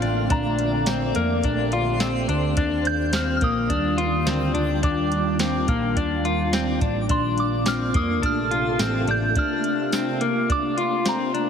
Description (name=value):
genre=dream pop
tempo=106 BPM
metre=4/4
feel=straight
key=Bb major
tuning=A4 = 440 Hz
part: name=soft synth bell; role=melody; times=0.0-11.5 s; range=Bb5 to G6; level=-28 LUFS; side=right 1 dB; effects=chorus, phaser, digital delay
part: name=ethereal airy pad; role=sustained chords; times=0.0-11.5 s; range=C3 to G4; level=-27 LUFS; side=right 1 dB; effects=ensemble chorus, built-in reverb
part: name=clean electric guitar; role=arpeggios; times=0.0-11.5 s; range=Bb3 to F4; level=-25 LUFS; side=left 4 dB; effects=analog chorus, digital delay
part: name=hollow-body short-scale picked electric bass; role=bass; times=0.0-9.3 s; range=A1 to F2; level=-27 LUFS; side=right 1 dB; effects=none
part: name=soft vintage rhythm box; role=drums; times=0.0-11.5 s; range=hi-hat, kick drum, snare drum, tambourine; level=-26 LUFS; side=right 1 dB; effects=none
part: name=twinkling granular texture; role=texture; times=0.0-9.0 s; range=A4 to G5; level=-35 LUFS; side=right 2 dB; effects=built-in reverb, digital delay
room=moderate lush hall reverb, RT60 2.1 s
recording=heavily compressed radio sound, multiband compression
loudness=-20 LUFS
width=side -7 dB against mid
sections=0.0-11.5 A section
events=none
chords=0.0 Bbmaj9; 2.6 Ebmaj9; 7.1 Bbmaj9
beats=| 0.30 0.87 1.44 2.00 | 2.57 3.13 3.70 4.27 | 4.83 5.40 5.96 6.53 | 7.10 7.66 8.23 8.79 | 9.36 9.93 10.49 11.06